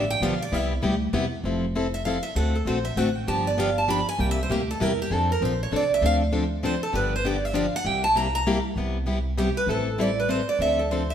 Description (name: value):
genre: acoustic string swing (jazz manouche)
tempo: 197 BPM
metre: 3/4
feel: swing 60% on 8ths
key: F major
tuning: A4 = 436 Hz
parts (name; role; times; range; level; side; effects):
- picked steel-string acoustic guitar; melody; 0.0-11.1 s; G4 to B5; -25 LUFS; right 2 dB; none
- picked plugged-in steel-string acoustic guitar; accompaniment; 0.0-11.0 s; C3 to A4; -26 LUFS; left 2 dB; none
- upright bass; bass; 0.0-11.1 s; F1 to F2; -28 LUFS; equal; none
room: wet stone room reverb, RT60 1.2 s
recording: band playing live in one room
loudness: -22 LUFS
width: side -9 dB against mid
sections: 0.0-1.4 A section; 1.4-8.8 A section; 8.8-11.1 A section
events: steel-string acoustic guitar solo 0.0-8.8, 8.8-11.1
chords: 0.0 G7; 0.5 Cmaj7; 1.4 Fmaj7; 2.4 D7; 3.3 G7; 4.2 C7; 5.1 F6; 6.0 Dm7; 6.9 G7; 7.9 C7; 8.8 Cmaj7; 9.7 Am7; 10.6 Dm7